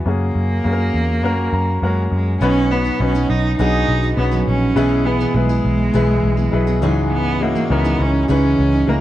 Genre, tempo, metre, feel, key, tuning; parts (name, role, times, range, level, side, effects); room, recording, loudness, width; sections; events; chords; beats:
piano-driven pop; 102 BPM; 4/4; straight; B major; A4 = 440 Hz
clear baby grand piano; accompaniment; 0.0-9.0 s; G#2 to A#5; -21 LUFS; left 3 dB
warm cello; melody; 0.1-9.0 s; F#3 to D#4; -20 LUFS; right 1 dB
vintage muted picked electric bass; bass; 0.1-9.0 s; A#1 to F#2; -19 LUFS; equal
picked steel-string acoustic guitar; riff; 2.4-9.0 s; B2 to G#4; -24 LUFS; right 5 dB
light reverb; dark, warm production; -15 LUFS; side -14 dB against mid
0.0-2.4 A section; 2.4-9.0 B section
grand piano fill 1.2-2.4
0.1 F#add9; 2.4 Badd9; 4.8 E/B; 6.8 C#madd9
| 0.06 0.65 1.24 1.82 | 2.41 3.00 3.59 4.18 | 4.76 5.35 5.94 6.53 | 7.11 7.70 8.29 8.87